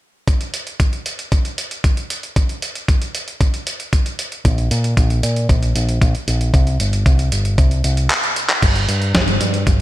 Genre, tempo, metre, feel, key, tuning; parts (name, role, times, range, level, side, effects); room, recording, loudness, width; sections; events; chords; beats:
italo disco; 115 BPM; 4/4; straight; A4 = 441 Hz
dusty soul sampler-style drum kit; drums; 0.3-9.8 s; crash cymbal, handclaps, hi-hat, snare drum; -22 LUFS; right 1 dB
electronic kick drum; drums; 0.3-9.8 s; -15 LUFS; equal
picked electric bass with an envelope filter; bass; 4.4-9.8 s; G1 to Bb2; -17 LUFS; equal
light reverb; bright 1980s-style digital production; -15 LUFS; side -15 dB against mid
0.3-8.6 A section; 8.6-9.8 B section
kick drops out 8.1-8.6; drum fill 8.1-8.6
| 0.28 0.80 1.32 1.84 | 2.36 2.88 3.41 3.93 | 4.45 4.97 5.49 6.01 | 6.54 7.06 7.58 8.10 | 8.62 9.15 9.67